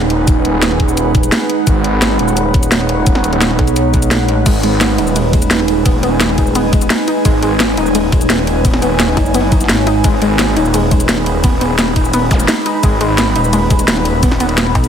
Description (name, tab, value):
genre	dark technical drum and bass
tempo	172 BPM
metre	4/4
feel	straight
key	G# minor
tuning	A4 = 440 Hz
part	deep dark ambient pad	sustained chords	0.0-14.9 s	G#3 to C#5	-20 LUFS	right 3 dB	chorus, built-in reverb, sidechain pumping
part	wide detuned saw bass	bass	0.0-14.7 s	D#1 to G#1	-16 LUFS	equal	chorus, overdrive, sidechain pumping
part	drum and bass drum kit	drums	0.0-14.9 s	cabasa, crash cymbal, hi-hat, ride cymbal, snare drum	-17 LUFS	equal	overdrive
part	warbly tape-like pad	texture	0.0-14.9 s	D#4 to B5	-19 LUFS	right 1 dB	chorus, built-in reverb, phaser, sidechain pumping
part	electronic kick drum	drums	0.3-14.8 s	none	-13 LUFS	equal	overdrive
part	pulsing pluck wobble bass	bass	3.6-4.4, 9.2-10.0, 14.8-14.9 s	F#1 to B1	-15 LUFS	equal	chorus
part	warbly dusty pluck	arpeggios	4.5-14.8 s	G#3 to D#4	-19 LUFS	left 2 dB	chorus, sidechain pumping, ping-pong delay
part	zap	sound effects	12.3-12.4 s	none	-24 LUFS	equal	none
room	light reverb, digital ambience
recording	heavily compressed radio sound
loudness	-10 LUFS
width	side -8 dB against mid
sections	0.0-14.9 A section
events	none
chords	0.0 G#m